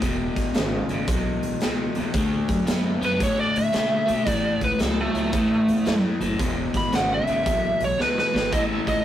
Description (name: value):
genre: electric blues shuffle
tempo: 113 BPM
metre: 4/4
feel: swing 65% on 8ths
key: A major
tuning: A4 = 439 Hz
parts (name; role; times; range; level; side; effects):
- crunchy overdriven guitar; riff; 0.0-9.0 s; E2 to B3; -25 LUFS; left 2 dB; none
- upright bass; bass; 0.0-9.0 s; E1 to B2; -30 LUFS; equal; none
- raw garage drum kit; drums; 0.0-9.0 s; hi-hat, kick drum, snare drum; -27 LUFS; right 1 dB; none
- biting lead guitar; melody; 3.0-9.0 s; A3 to B5; -23 LUFS; right 1 dB; overdrive
- bright tonewheel organ; accompaniment; 8.5-9.0 s; E3 to A4; -31 LUFS; right 2 dB; slow rotary speaker, overdrive
room: light reverb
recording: rough rehearsal-room recording, warm saturation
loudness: -20 LUFS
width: side -11 dB against mid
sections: 0.0-8.5 A section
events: lead electric guitar solo 0.0-8.5; drum fill 8.0-8.5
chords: 0.0 E; 2.1 D; 4.3 A; 6.4 E; 8.5 A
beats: | 0.02 0.55 1.08 1.62 | 2.15 2.68 3.21 3.74 | 4.27 4.80 5.33 5.87 | 6.40 6.93 7.46 7.99 | 8.52